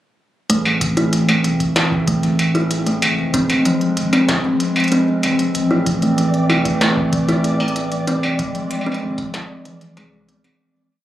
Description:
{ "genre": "IDM", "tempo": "95 BPM", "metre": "4/4", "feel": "straight", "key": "A harmonic minor", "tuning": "A4 = 440 Hz", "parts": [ { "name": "warbly tape-like pad", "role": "sustained chords", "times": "0.8-10.6 s", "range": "E3 to C4", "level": "-20 LUFS", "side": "right 1 dB", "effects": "chorus, built-in reverb" }, { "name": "kalimba", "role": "arpeggios", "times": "0.5-10.6 s", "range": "E3 to E4", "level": "-19 LUFS", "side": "equal", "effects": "tape echo" }, { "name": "warm sub bass", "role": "bass", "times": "0.5-10.5 s", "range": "F1 to C2", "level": "-27 LUFS", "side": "left 1 dB", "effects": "none" }, { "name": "industrial drum kit", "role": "drums", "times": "0.5-10.6 s", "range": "hi-hat, snare drum, struck metal", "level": "-21 LUFS", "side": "equal", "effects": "ping-pong delay" }, { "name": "electronic kick drum", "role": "drums", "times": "0.8-9.3 s", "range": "none", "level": "-26 LUFS", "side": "equal", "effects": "none" }, { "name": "flickering grainy texture", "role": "texture", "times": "5.8-10.6 s", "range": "D5", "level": "-29 LUFS", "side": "equal", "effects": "built-in reverb, sidechain pumping" } ], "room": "moderate echo chamber reverb, RT60 2.3 s", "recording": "recorded on a phone in the room, club reverb, compression", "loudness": "-15 LUFS", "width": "side -13 dB against mid", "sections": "0.5-10.6 groove", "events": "fade-out 7.2-10.6", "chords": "0.5 Am; 3.0 Fm; 5.5 Am; 8.1 Fm", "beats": "| 0.50 1.13 1.76 2.39 | 3.02 3.65 4.29 4.92 | 5.55 6.18 6.81 7.44 | 8.07 8.71 9.34 9.97" }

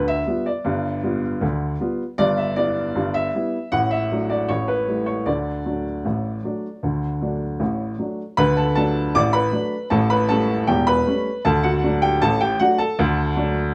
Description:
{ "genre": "ragtime piano", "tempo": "78 BPM", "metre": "2/4", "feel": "straight", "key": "D major", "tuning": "A4 = 440 Hz", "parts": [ { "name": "warm upright piano", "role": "solo", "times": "0.0-13.7 s", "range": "E1 to D6", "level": "-21 LUFS", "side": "equal", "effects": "none" } ], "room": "moderate studio reverb, RT60 0.7 s", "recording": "close, detailed microphones", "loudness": "-21 LUFS", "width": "mono", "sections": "0.0-8.4 A section; 8.4-13.7 B section", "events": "none", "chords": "0.0 G7; 2.2 Em/G; 3.7 D/A; 4.5 A5; 5.3 D; 9.9 A7; 11.4 D", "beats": "| 0.66 1.43 | 2.19 2.96 | 3.73 4.50 | 5.27 6.05 | 6.83 7.61 | 8.38 9.15 | 9.92 10.68 | 11.45 12.21 | 12.98" }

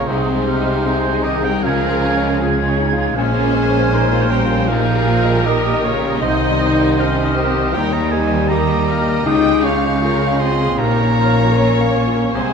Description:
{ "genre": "cinematic, emotional film score for orchestra", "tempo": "78 BPM", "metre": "4/4", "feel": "rubato", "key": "Db lydian", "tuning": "A4 = 440 Hz", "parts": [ { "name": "warm studio violin section", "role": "melody", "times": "0.0-12.5 s", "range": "Eb4 to G5", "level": "-26 LUFS", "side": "left 2 dB", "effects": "none" }, { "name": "clear oboe", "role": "second line", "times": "0.0-12.5 s", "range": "C5 to Eb6", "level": "-24 LUFS", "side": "right 2 dB", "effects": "none" }, { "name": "large flute ensemble", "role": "second line", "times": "0.0-12.5 s", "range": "Db6 to Ab6", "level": "-26 LUFS", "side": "right 2 dB", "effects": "none" }, { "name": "mellow clarinet", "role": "second line", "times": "0.0-12.5 s", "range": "C4 to G4", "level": "-25 LUFS", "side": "left 1 dB", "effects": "none" }, { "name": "warm studio violin section", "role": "second line", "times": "0.0-12.5 s", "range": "G3 to Bb4", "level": "-27 LUFS", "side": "left 2 dB", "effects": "none" }, { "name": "bright concert grand piano", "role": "accompaniment", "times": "0.0-12.5 s", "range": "Bb1 to F5", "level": "-23 LUFS", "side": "left 2 dB", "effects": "none" }, { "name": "rich studio viola section", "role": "accompaniment", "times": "0.0-12.5 s", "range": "G3 to Eb5", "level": "-23 LUFS", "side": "right 2 dB", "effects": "none" }, { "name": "dark French horn section", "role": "sustained chords", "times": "0.0-12.5 s", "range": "C3 to Eb4", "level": "-21 LUFS", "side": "left 5 dB", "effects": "none" }, { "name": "rich studio double bass section", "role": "bass", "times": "0.0-12.5 s", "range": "Bb1 to Eb2", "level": "-22 LUFS", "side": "right 4 dB", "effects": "none" }, { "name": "warm studio cello section", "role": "bass", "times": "0.0-12.5 s", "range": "Bb2 to Eb3", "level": "-23 LUFS", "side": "right 2 dB", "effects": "none" } ], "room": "moderate scoring stage reverb, RT60 1.6 s", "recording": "dark, warm production", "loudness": "-14 LUFS", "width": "side -6 dB against mid", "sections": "0.0-12.5 A section", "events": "none", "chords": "0.1 Ab/C; 1.6 Db; 3.2 Bbm; 4.7 Eb/Bb; 6.2 Cm; 7.7 Eb; 9.3 Db; 10.8 Bbm", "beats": "| 0.07 0.85 1.64 2.41 | 3.16 3.92 4.69 5.46 | 6.22 6.99 7.75 8.50 | 9.25 10.02 10.78 11.55 | 12.33" }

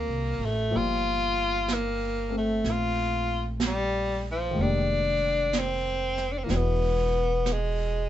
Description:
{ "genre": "jazz ballad", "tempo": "62 BPM", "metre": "4/4", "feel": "swing 67% on 8ths", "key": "unclear", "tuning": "A4 = 440 Hz", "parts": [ { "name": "edgy tenor saxophone", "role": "melody", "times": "0.0-8.1 s", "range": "F3 to F4", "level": "-27 LUFS", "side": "left 2 dB", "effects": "none" }, { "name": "warm grand piano", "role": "accompaniment", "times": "0.0-8.1 s", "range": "Bb2 to A4", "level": "-33 LUFS", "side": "left 1 dB", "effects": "none" }, { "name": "upright bass", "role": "bass", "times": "0.0-8.1 s", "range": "E1 to C2", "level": "-30 LUFS", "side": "right 1 dB", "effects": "none" }, { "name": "jazz brush drum kit", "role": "drums", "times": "0.7-8.1 s", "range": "brushed snare drum, hi-hat, snare drum", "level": "-34 LUFS", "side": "right 4 dB", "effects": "none" } ], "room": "moderate studio reverb, RT60 0.5 s", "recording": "band playing live in one room, nothing above 8.0 kHz", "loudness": "-24 LUFS", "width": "side -12 dB against mid", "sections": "0.0-8.1 A section", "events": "none", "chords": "0.0 D7b9; 0.7 Gm9; 4.6 Fm11; 6.5 E9", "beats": "| 0.71 1.67 2.63 3.60 | 4.56 5.53 6.49 7.46" }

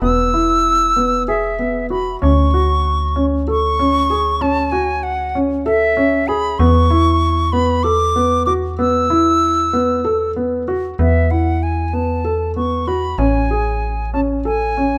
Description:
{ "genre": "contemporary instrumental, chamber music in an uneven meter", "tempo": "192 BPM (eighths)", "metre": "7/8", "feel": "straight", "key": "E mixolydian", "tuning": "A4 = 440 Hz", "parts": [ { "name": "silver concert flute", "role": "melody", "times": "0.0-15.0 s", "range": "E5 to E6", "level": "-20 LUFS", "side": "equal", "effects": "none" }, { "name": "dark grand piano", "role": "arpeggios", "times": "0.0-15.0 s", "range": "B3 to A4", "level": "-20 LUFS", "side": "equal", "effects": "none" }, { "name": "metallic FM bass", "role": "bass", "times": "0.0-15.0 s", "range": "E1 to E2", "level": "-22 LUFS", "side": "equal", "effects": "none" } ], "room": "light reverb", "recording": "close, detailed microphones", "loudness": "-16 LUFS", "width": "mono", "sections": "0.0-2.2 A section; 2.2-11.0 B section; 11.0-15.0 A section", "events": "none", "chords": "0.0 E5; 2.2 Dmaj7; 6.6 E5; 13.2 Amaj7", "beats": "| 0.02 0.34 0.65 0.96 1.28 1.59 1.90 | 2.22 2.53 2.84 3.15 3.47 3.78 4.09 | 4.41 4.72 5.03 5.34 5.66 5.97 6.28 | 6.59 6.91 7.22 7.53 7.85 8.16 8.47 | 8.79 9.10 9.41 9.73 10.04 10.35 10.67 | 10.98 11.30 11.61 11.93 12.24 12.55 12.87 | 13.19 13.50 13.81 14.13 14.45 14.76" }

